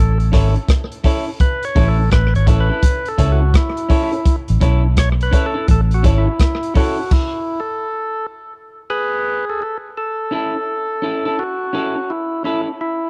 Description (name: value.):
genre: roots reggae.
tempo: 84 BPM.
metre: 4/4.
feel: swing 63% on 16ths.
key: A major.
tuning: A4 = 440 Hz.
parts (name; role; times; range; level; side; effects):
percussive tonewheel organ; melody; 0.0-13.1 s; E4 to C#5; -24 LUFS; equal; overdrive, dub echo.
vintage muted fingered electric bass; bass; 0.0-6.3 s; G#1 to C#2; -17 LUFS; equal; none.
crunchy breakbeat drum kit; drums; 0.2-7.3 s; crash cymbal, hi-hat, kick drum, rim click; -18 LUFS; equal; none.
semi-hollow electric guitar; accompaniment; 0.3-12.7 s; C#4 to A4; -28 LUFS; equal; spring reverb, dub echo.
clear grand piano; stabs; 0.3-6.9 s; E4 to C#5; -28 LUFS; equal; none.
room: studio reverb.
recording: dry, close 1970s-style studio recording.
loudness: -17 LUFS.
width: mono.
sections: 0.0-10.0 A section; 10.0-13.1 B section.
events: tonewheel organ solo 0.0-10.0; stop 7.1-10.0.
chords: 0.0 A; 7.1 N.C.; 10.0 A.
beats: 0.69 | 1.40 2.12 2.83 3.54 | 4.26 4.97 5.68 6.40 | 7.11 7.83 8.54 9.25 | 9.96 10.68 11.39 12.10 | 12.81.